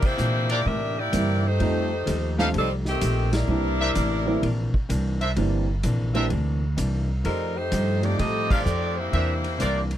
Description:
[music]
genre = jazz, big band swing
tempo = 128 BPM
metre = 4/4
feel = swing 66% on 8ths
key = C mixolydian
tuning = A4 = 438 Hz
[part]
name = clear saxophone section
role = melody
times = 0.0-9.9 s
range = Eb3 to E5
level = -27 LUFS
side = left 1 dB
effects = none
[part]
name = hollow-body jazz guitar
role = accompaniment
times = 0.0-9.9 s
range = C3 to G4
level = -32 LUFS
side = left 2 dB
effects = none
[part]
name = upright bass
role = bass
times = 0.0-10.0 s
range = G1 to C3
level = -25 LUFS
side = equal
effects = none
[part]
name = vintage drum kit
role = drums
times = 0.0-10.0 s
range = crash cymbal, hi-hat, kick drum, ride cymbal, snare drum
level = -32 LUFS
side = equal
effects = none
[part]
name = clear trumpet section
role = stabs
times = 0.5-9.8 s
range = D4 to F5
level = -25 LUFS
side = equal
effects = none
[part]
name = warm grand piano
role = accompaniment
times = 1.1-8.6 s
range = D3 to E4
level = -28 LUFS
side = right 2 dB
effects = none
[sound]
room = little or no reverb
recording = none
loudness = -22 LUFS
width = side -11 dB against mid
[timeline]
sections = 0.0-10.0 A section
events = band accent 0.0, 3.2, 8.4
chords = 0.0 C9; 1.6 F9; 3.5 C9; 7.2 F9; 9.1 C9

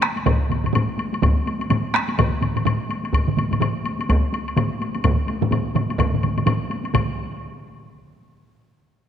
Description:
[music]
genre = japanese traditional, taiko drum ensemble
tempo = 126 BPM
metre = 4/4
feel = swing 60% on 16ths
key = none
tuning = none
[part]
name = solo taiko drums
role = percussion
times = 0.0-7.4 s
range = none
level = -25 LUFS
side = left 3 dB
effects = none
[part]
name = taiko ensemble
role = percussion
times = 0.0-7.2 s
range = none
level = -28 LUFS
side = left 1 dB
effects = none
[part]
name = taiko ensemble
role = percussion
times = 0.0-7.4 s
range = none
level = -25 LUFS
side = right 5 dB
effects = none
[part]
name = woodblock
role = percussion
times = 0.0-7.2 s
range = none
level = -28 LUFS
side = left 4 dB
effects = none
[part]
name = taiko ensemble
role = percussion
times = 0.3-7.2 s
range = none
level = -24 LUFS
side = equal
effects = none
[sound]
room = moderate concert hall reverb, RT60 2.3 s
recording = close, detailed microphones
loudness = -19 LUFS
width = side -9 dB against mid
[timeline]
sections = 0.0-6.9 A section; 6.9-8.8 B section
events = none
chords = none

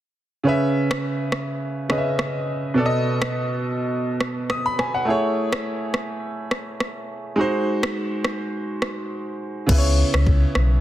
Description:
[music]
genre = afrobeats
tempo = 104 BPM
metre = 4/4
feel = swing 55% on 16ths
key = C# minor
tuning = A4 = 442 Hz
[part]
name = clear baby grand piano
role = accompaniment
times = 0.4-10.8 s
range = B2 to D#6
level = -22 LUFS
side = right 1 dB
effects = none
[part]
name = afro-pop drum kit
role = drums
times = 0.9-10.7 s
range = crash cymbal, kick drum, rim click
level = -25 LUFS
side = equal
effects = overdrive
[part]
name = sub bass with octave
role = bass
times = 9.7-10.8 s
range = B1 to C#2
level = -18 LUFS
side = equal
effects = none
[sound]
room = light reverb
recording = dense, heavily limited modern master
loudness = -20 LUFS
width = side -13 dB against mid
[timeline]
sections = 0.5-9.7 A section; 9.7-10.8 B section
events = hi-hats muted 9.7-10.8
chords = 0.5 C#m7; 2.8 B7; 5.1 Amaj7; 7.4 G#7; 9.7 C#m7

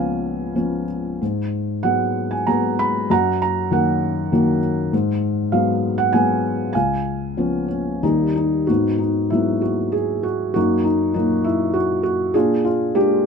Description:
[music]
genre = classical, lyrical solo piano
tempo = 88-102 BPM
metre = 3/4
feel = rubato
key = G# dorian, G# minor from 8.7 s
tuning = A4 = 440 Hz
[part]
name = felt-muted upright piano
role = solo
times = 0.0-13.3 s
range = C#2 to B5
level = -18 LUFS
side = equal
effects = none
[sound]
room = light reverb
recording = none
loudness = -18 LUFS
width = side -6 dB against mid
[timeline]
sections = 0.0-8.7 A section; 8.7-13.3 B section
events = none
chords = 0.0 C#7; 1.2 G#m7; 3.1 D#m/F#; 4.9 G#m7; 6.7 C#7; 8.0 D#; 8.7 G#m7; 10.6 D#m/F#; 12.3 A#7

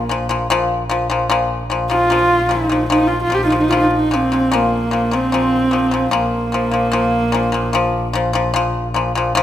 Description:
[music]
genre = mongolian traditional, Mongolian folk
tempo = 75 BPM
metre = 4/4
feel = straight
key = unclear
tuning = A4 = 440 Hz
[part]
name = warm horsehead fiddle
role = melody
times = 0.0-8.5 s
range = Bb3 to G4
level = -17 LUFS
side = right 1 dB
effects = none
[part]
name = pipa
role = arpeggios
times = 0.0-9.4 s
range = Bb2 to F3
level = -18 LUFS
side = left 3 dB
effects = none
[part]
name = clear double bass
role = drone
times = 0.0-9.4 s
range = Bb1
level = -24 LUFS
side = equal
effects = none
[sound]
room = moderate recital hall reverb, RT60 1.6 s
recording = close, detailed microphones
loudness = -14 LUFS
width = side -11 dB against mid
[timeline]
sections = 0.0-9.4 A section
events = none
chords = 0.0 Bb5

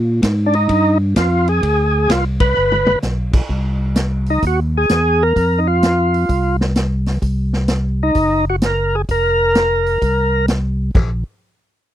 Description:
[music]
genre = soul jazz organ trio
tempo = 129 BPM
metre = 4/4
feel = swing 66% on 8ths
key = unclear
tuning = A4 = 441 Hz
[part]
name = tonewheel organ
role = bass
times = 0.0-11.2 s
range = F1 to Bb2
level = -18 LUFS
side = equal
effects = overdrive, stopped rotary speaker
[part]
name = vintage drum kit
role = drums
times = 0.2-11.1 s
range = china cymbal, crash cymbal, hi-hat, kick drum, ride cymbal, snare drum, toms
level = -18 LUFS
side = equal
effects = none
[part]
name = percussive tonewheel organ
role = melody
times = 0.5-10.5 s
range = D4 to Cb5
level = -15 LUFS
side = equal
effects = slow rotary speaker, overdrive
[sound]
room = little or no reverb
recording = dry, close 1970s-style studio recording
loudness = -14 LUFS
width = side -12 dB against mid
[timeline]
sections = 0.0-3.5 A section; 3.5-11.0 B section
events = band accent 2.3; drum fill 2.6-3.0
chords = 0.0 Bb5; 1.6 Fm6; 2.6 G; 3.5 Caug; 5.4 F5; 7.2 Cdim; 9.1 Fsus4; 11.0 N.C.

